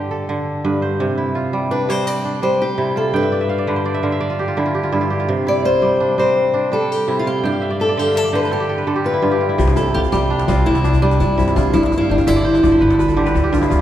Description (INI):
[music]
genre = west african traditional, West African string and xylophone music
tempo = 112 BPM (dotted quarters)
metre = 12/8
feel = straight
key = C major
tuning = A4 = 439 Hz
[part]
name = fingerpicked steel-string acoustic guitar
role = melody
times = 0.0-13.3 s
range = D4 to D5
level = -18 LUFS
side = left 1 dB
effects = none
[part]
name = kora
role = arpeggios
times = 0.0-13.8 s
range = G2 to G5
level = -18 LUFS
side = right 1 dB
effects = none
[part]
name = upright bass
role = bass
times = 9.6-13.8 s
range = G1 to G2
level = -18 LUFS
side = equal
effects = none
[part]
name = djembe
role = percussion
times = 9.6-13.8 s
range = none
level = -23 LUFS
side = left 3 dB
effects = none
[sound]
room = wet church reverb, RT60 2.7 s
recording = recorded in a church or concert hall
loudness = -15 LUFS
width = side -11 dB against mid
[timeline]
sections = 0.0-9.6 A section; 9.6-13.8 A section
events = kora fill 3.1-5.3, 7.4-9.6, 12.0-13.8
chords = 0.0 G; 1.0 C; 3.1 G; 5.3 C; 7.4 G; 9.6 C; 11.7 G5